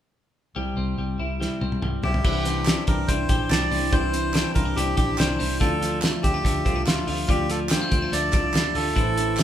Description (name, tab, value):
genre	jangly indie pop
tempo	143 BPM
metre	4/4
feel	straight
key	C major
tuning	A4 = 441 Hz
part	fingerpicked plugged-in steel-string acoustic guitar	accompaniment	0.6-9.4 s	A2 to G4	-32 LUFS	right 6 dB	none
part	twelve-string electric guitar	arpeggios	0.6-9.4 s	E3 to G4	-29 LUFS	left 4 dB	none
part	vintage muted fingered electric bass	bass	0.6-9.4 s	A1 to D2	-29 LUFS	equal	none
part	cloth-damped thuddy drum kit	drums	1.4-9.4 s	crash cymbal, hi-hat, kick drum, snare drum, toms	-24 LUFS	equal	none
part	melodica	melody	2.0-9.4 s	F4 to D5	-27 LUFS	right 1 dB	none
part	warm upright piano	accompaniment	2.2-9.4 s	A3 to G4	-32 LUFS	left 3 dB	none
part	group handclap	percussion	2.7-9.4 s	none	-34 LUFS	right 4 dB	none
room	moderate large studio reverb, RT60 0.8 s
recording	band playing live in one room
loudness	-21 LUFS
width	side -10 dB against mid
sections	0.6-2.2 A section; 2.2-9.4 B section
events	drum fill 1.4-2.2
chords	0.6 C; 2.2 Cadd9; 5.6 Dm